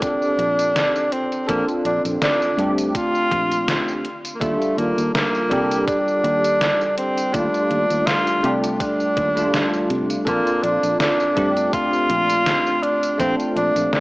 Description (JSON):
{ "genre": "vaporwave", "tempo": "82 BPM", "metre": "4/4", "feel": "swing 54% on 16ths", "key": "Bb major", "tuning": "A4 = 439 Hz", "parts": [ { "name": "warm tenor saxophone", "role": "melody", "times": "0.0-14.0 s", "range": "A3 to F4", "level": "-20 LUFS", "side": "equal", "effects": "vintage 12-bit sampler grit, tape echo" }, { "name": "bell-like tine electric piano", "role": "accompaniment", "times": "0.0-14.0 s", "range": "G3 to A4", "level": "-23 LUFS", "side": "equal", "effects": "ensemble chorus" }, { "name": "fingered electric bass", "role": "bass", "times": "0.0-13.9 s", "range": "Bb1 to C3", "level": "-27 LUFS", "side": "equal", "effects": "tube saturation" }, { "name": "detuned 8-bit digital drum machine", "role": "drums", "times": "0.0-14.0 s", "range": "hi-hat, snare drum, tambourine", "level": "-25 LUFS", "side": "equal", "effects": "gated reverb" }, { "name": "electronic kick drum", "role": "drums", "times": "0.0-13.4 s", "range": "none", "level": "-31 LUFS", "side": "equal", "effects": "none" } ], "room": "moderate concert hall reverb, RT60 2.4 s", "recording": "cassette tape, small speaker sound", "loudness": "-17 LUFS", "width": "side -22 dB against mid", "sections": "0.0-14.0 A section", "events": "none", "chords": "0.0 Bbmaj9; 4.0 Ebmaj9#11; 10.3 Bbmaj9" }